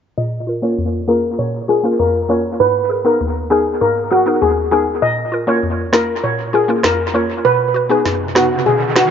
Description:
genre	dancehall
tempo	99 BPM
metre	4/4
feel	straight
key	unclear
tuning	A4 = 439 Hz
part	steel pan	melody	0.2-9.1 s	F#4 to D#5	-16 LUFS	left 1 dB	low-pass filter, analog delay
part	mallet-like synth pluck	accompaniment	0.2-9.1 s	D#2 to B4	-18 LUFS	equal	chorus, low-pass filter, analog delay
part	electronic rim click and snare drum	drums	5.9-9.1 s	none	-20 LUFS	right 1 dB	analog delay
part	riser	sound effects	7.9-9.1 s	none	-24 LUFS	right 4 dB	none
room	light reverb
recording	echo-heavy mix, nothing above 7.5 kHz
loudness	-14 LUFS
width	side -8 dB against mid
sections	0.2-9.1 A section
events	filter sweep 0.2-9.1; riser 7.9-9.1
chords	0.2 A#m; 2.6 G#madd9; 5.0 A#m; 7.4 B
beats	| 0.18 0.78 1.39 1.99 | 2.60 3.21 3.81 4.42 | 5.02 5.63 6.24 6.84 | 7.45 8.05 8.66

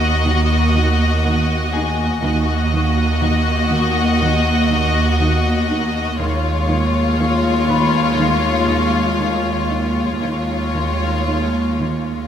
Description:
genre	cinematic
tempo	60 BPM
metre	4/4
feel	straight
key	Eb minor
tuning	A4 = 440 Hz
part	warm symphonic violin section	melody	0.0-12.3 s	Db5 to Eb5	-23 LUFS	left 3 dB	none
part	warm symphonic violin section	second line	0.0-12.3 s	F4 to Gb4	-22 LUFS	left 5 dB	none
part	dark symphonic viola section	accompaniment	0.0-12.3 s	Ab3 to Bb3	-26 LUFS	right 2 dB	none
part	warm symphonic cello section	riff	0.0-12.1 s	Eb3 to Eb4	-26 LUFS	right 2 dB	none
part	warm symphonic cello section	bass	0.0-12.3 s	Eb2	-22 LUFS	equal	none
part	warm symphonic double bass section	bass	0.0-12.3 s	Eb2	-20 LUFS	right 2 dB	none
part	concert harp	texture	1.7-11.6 s	Ab4 to Cb6	-27 LUFS	left 9 dB	none
room	moderate scoring stage reverb, RT60 1.7 s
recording	none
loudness	-15 LUFS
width	side -9 dB against mid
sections	0.0-12.3 A section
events	none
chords	0.0 Ebm; 6.2 Dbadd9/Eb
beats	0.27 1.25 | 2.23 3.22 4.21 5.21 | 6.20 7.19 8.19 9.20 | 10.22 11.27

